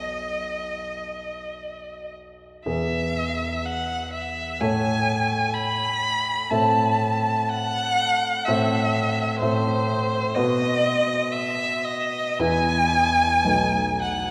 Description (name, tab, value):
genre	classical, romantic duo for violin and grand piano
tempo	50-65 BPM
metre	4/4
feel	rubato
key	unclear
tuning	A4 = 440 Hz
part	rich violin	melody	0.0-14.3 s	C5 to B5	-26 LUFS	equal	none
part	warm grand piano	accompaniment	0.0-14.3 s	B1 to E5	-28 LUFS	equal	none
room	wet cathedral reverb, RT60 5.2 s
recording	recorded in a church or concert hall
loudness	-23 LUFS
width	mono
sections	0.0-14.3 A section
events	none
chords	0.0 B; 2.7 E; 4.6 Amaj7; 6.5 Am; 10.4 B; 12.4 E; 13.4 B7